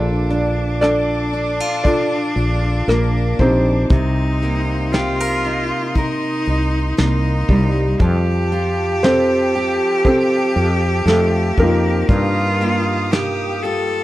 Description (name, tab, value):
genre	acoustic folk-pop ballad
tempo	58 BPM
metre	4/4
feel	straight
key	Bb major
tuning	A4 = 441 Hz
part	bright cello	second line	0.0-14.0 s	D4 to A4	-22 LUFS	right 1 dB	none
part	fingerpicked steel-string acoustic guitar	accompaniment	0.0-14.0 s	G2 to Bb4	-23 LUFS	equal	none
part	muted studio string section	sustained chords	0.0-14.0 s	G4 to Eb6	-31 LUFS	left 3 dB	none
part	woody fretless electric bass	bass	0.0-13.9 s	Bb1 to G2	-19 LUFS	equal	none
part	soft brush drum kit	drums	0.3-13.9 s	hi-hat, kick drum, rim click, snare drum	-19 LUFS	equal	none
part	felt-muted upright piano	melody	0.8-13.6 s	A3 to D5	-19 LUFS	equal	none
room	light reverb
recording	dark, warm production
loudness	-15 LUFS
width	side -16 dB against mid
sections	0.0-14.0 A section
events	none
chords	0.0 Bbmaj7; 3.9 Cm7; 8.0 Fadd9; 12.1 Ebadd9/G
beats	0.82 1.85 2.88 | 3.91 4.93 5.96 6.98 | 8.01 9.03 10.05 11.07 | 12.09 13.12